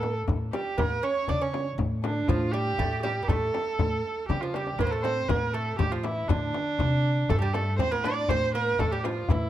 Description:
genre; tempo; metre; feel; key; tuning
Persian modal ensemble; 120 BPM; 3/4; straight; A dastgah homayun, A dastgah shur from 4.8 s; A4 = 440 Hz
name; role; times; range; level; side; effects
clear kamancheh; melody; 0.0-9.5 s; D4 to D5; -29 LUFS; right 2 dB; none
lute; second line; 0.0-9.5 s; D3 to D4; -32 LUFS; right 4 dB; none
upright bass; bass; 0.0-9.5 s; G2 to C#3; -30 LUFS; equal; none
frame drum; percussion; 0.0-9.4 s; none; -34 LUFS; left 7 dB; none
tombak; percussion; 0.0-9.4 s; none; -32 LUFS; left 2 dB; none
room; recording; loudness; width
light reverb; close, detailed microphones; -24 LUFS; side -12 dB against mid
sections
0.0-4.8 A section; 4.8-9.5 B section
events
drum fill 4.3-4.8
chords
none

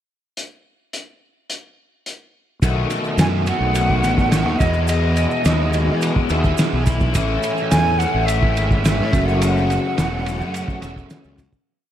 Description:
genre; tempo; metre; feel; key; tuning
psychedelic rock; 106 BPM; 4/4; straight; F# dorian; A4 = 440 Hz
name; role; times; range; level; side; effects
cloth-damped thuddy drum kit; drums; 0.4-11.7 s; hi-hat, kick drum, ride cymbal, snare drum; -22 LUFS; equal; none
raw garage guitar; riff; 2.6-11.4 s; E2 to F#4; -22 LUFS; left 2 dB; overdrive, rotary speaker
fuzz fingered electric bass; bass; 2.6-11.5 s; E1 to E3; -20 LUFS; equal; overdrive
tube shaker; percussion; 2.6-11.6 s; none; -38 LUFS; right 10 dB; none
breathy bright silver concert flute; melody; 3.2-11.3 s; D#5 to G#5; -24 LUFS; right 2 dB; tape echo
room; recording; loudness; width
moderate plate reverb, RT60 2.4 s; dreamy mix soaked in reverb; -16 LUFS; side -11 dB against mid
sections
0.4-2.6 pickup bar; 2.6-11.7 verse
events
fade-out 9.4-11.7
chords
0.4 N.C.; 2.6 B7; 4.6 Emaj7; 7.2 Amaj7; 9.1 F#m7

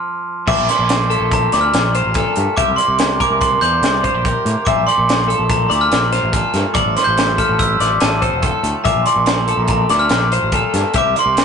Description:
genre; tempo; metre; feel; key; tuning
math rock and midwest emo; 143 BPM; 5/4; straight; unclear; A4 = 440 Hz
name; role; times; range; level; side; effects
glockenspiel with hard plastic mallets; melody; 0.0-11.4 s; A5 to G6; -18 LUFS; right 3 dB; none
twangy electric guitar; accompaniment; 0.0-11.4 s; F2 to A4; -25 LUFS; right 5 dB; none
twelve-string electric guitar; arpeggios; 0.5-11.4 s; A4 to E5; -20 LUFS; left 6 dB; none
growling fingered electric bass; bass; 0.5-11.4 s; E1 to A2; -21 LUFS; equal; overdrive
crisp fusion drum kit; drums; 0.5-11.4 s; crash cymbal, hi-hat, kick drum, snare drum; -20 LUFS; equal; none
room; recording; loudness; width
light reverb; rough rehearsal-room recording, tube saturation, nothing above 10.6 kHz; -13 LUFS; side -6 dB against mid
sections
0.5-11.4 A section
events
stop 0.0-0.5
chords
0.5 Bbmaj9; 2.6 C9; 4.7 Bbmaj9; 6.8 Fmaj7/A; 8.8 Bbmaj9; 10.9 C9

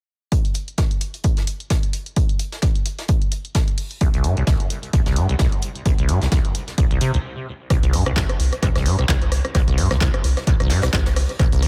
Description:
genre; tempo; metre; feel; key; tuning
acid house; 130 BPM; 4/4; swing 56% on 16ths; unclear; A4 = 440 Hz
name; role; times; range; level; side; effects
electronic kick drum; drums; 0.3-11.5 s; none; -22 LUFS; equal; none
punchy analog drum machine; drums; 0.3-11.7 s; handclaps, hi-hat, rim click; -30 LUFS; equal; dub echo
vintage brush drum kit; drums; 0.3-11.7 s; hi-hat, snare drum; -36 LUFS; equal; high-pass filter on hats, high-pass filter on snare, high-pass filter on room
acid bass, saw; riff; 4.0-11.7 s; C2 to C3; -24 LUFS; equal; lush chorus, sidechain pumping, analog delay
round analog bass; bass; 7.7-11.7 s; Bb1 to C2; -23 LUFS; equal; sidechain pumping
room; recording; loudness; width
little or no reverb; echo-heavy mix; -20 LUFS; mono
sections
0.3-7.7 A section; 7.7-11.7 B section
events
stop 7.2-7.7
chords
0.3 C5

